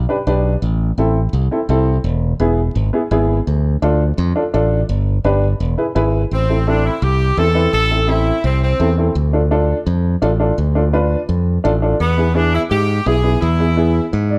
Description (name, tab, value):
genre	latin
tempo	169 BPM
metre	4/4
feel	straight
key	A harmonic minor from 6.3 s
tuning	A4 = 440 Hz
part	modern bright fingered electric bass	bass	0.0-14.4 s	E1 to G#2	-18 LUFS	equal	none
part	warm upright piano	accompaniment	0.1-14.4 s	B3 to D5	-21 LUFS	equal	none
part	bright saxophone section	melody	6.3-9.0, 12.0-14.1 s	B3 to A4	-21 LUFS	equal	none
room	light reverb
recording	dark, warm production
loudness	-16 LUFS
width	mono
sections	0.0-6.3 A section; 6.3-14.4 B section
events	upright piano fill 14.1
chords	0.0 G; 0.6 Am; 2.0 E; 3.5 Dm; 4.9 G; 5.6 E; 6.3 Am; 9.2 Dm; 12.0 E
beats	0.27 | 0.62 0.98 1.33 1.69 | 2.04 2.40 2.75 3.11 | 3.47 3.82 4.18 4.53 | 4.89 5.25 5.60 5.96 | 6.31 6.67 7.02 7.38 | 7.74 8.09 8.45 8.80 | 9.16 9.51 9.87 10.22 | 10.58 10.93 11.29 11.64 | 12.00 12.36 12.71 13.07 | 13.42 13.78 14.13